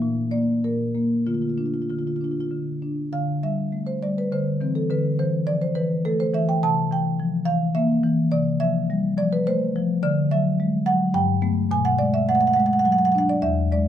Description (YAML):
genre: classical, contemporary piece for solo marimba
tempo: 93-108 BPM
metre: 3/4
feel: rubato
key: B dorian from 10.0 s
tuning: A4 = 440 Hz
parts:
  - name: marimba with soft mallets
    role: solo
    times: 0.0-13.9 s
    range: E2 to A5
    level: -20 LUFS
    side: equal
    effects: none
room: light reverb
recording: minimal, uncompressed stereo recording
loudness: -20 LUFS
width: side -10 dB against mid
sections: 0.0-3.1 A section; 3.1-13.9 A section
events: none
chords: 0.0 Bbmaj7; 1.3 Dm6; 3.1 Dsus4; 4.3 Cadd9/D; 4.9 Fmaj7/D; 6.6 C7; 8.3 Fadd9/C; 10.0 Dadd9; 11.2 Gadd9; 11.7 Bm6